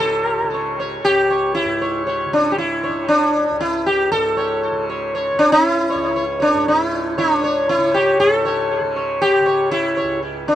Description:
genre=indian classical, Hindustani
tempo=117 BPM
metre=4/4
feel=straight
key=C# raga todi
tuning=A4 = 440 Hz
part: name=sitar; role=melody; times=0.0-10.6 s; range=D4 to C#5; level=-16 LUFS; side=equal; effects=tape echo
part: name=tanpura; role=drone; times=0.0-10.6 s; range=C#2 to C#3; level=-28 LUFS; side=right 2 dB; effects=none
room=light reverb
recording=dry, close 1970s-style studio recording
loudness=-16 LUFS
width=side -12 dB against mid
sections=0.0-8.2 A section; 8.2-10.6 B section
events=none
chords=none

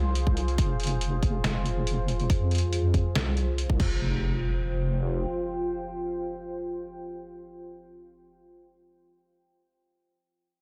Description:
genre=deep dubstep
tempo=140 BPM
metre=4/4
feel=half-time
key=F minor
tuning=A4 = 441 Hz
part: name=deep dark ambient pad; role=sustained chords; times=0.0-8.2 s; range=F4 to G5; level=-36 LUFS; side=equal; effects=chorus, built-in reverb
part: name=wobble bass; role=bass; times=0.0-5.3 s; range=F1 to F2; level=-29 LUFS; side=equal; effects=chorus
part: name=downlifter and impact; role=sound effects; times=0.0-0.6, 3.8-8.6 s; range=none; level=-40 LUFS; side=equal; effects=none
part: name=trip hop sampler-style drum kit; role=drums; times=0.2-3.9 s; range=crash cymbal, hi-hat, snare drum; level=-36 LUFS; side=equal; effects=none
part: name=electronic kick drum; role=drums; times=0.3-3.9 s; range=none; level=-28 LUFS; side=equal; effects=none
room=light reverb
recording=none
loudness=-28 LUFS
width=mono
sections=0.0-4.0 A section; 4.0-7.4 B section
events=filter sweep on wobble bass 0.0-4.0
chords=0.0 Fm; 3.8 F5

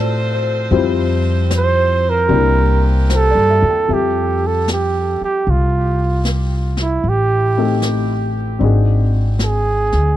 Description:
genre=jazz ballad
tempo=76 BPM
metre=4/4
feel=swing 68% on 8ths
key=F major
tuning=A4 = 440 Hz
part: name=warm upright piano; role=accompaniment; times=0.0-10.2 s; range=F3 to G5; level=-21 LUFS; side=left 9 dB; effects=none
part: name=bright saxophone section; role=sustained chords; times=0.0-3.9 s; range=E3 to C5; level=-26 LUFS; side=right 1 dB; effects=none
part: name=upright bass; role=bass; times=0.0-10.2 s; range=Ab1 to A2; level=-16 LUFS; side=equal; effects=none
part: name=jazz brush drum kit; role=drums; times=0.7-10.2 s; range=brushed snare drum, hi-hat, snare drum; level=-27 LUFS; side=left 1 dB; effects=none
part: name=warm flugelhorn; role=melody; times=1.6-10.2 s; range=E4 to C5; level=-18 LUFS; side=right 4 dB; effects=tape echo
room=little or no reverb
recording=dry, close 1970s-style studio recording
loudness=-13 LUFS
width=side -13 dB against mid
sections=0.0-3.9 A section; 3.9-10.2 B section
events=flugelhorn solo 0.0-3.9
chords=0.0 Fmaj7; 2.3 C7; 3.9 Fmaj7; 7.0 Am7b5; 8.6 Ab7#11

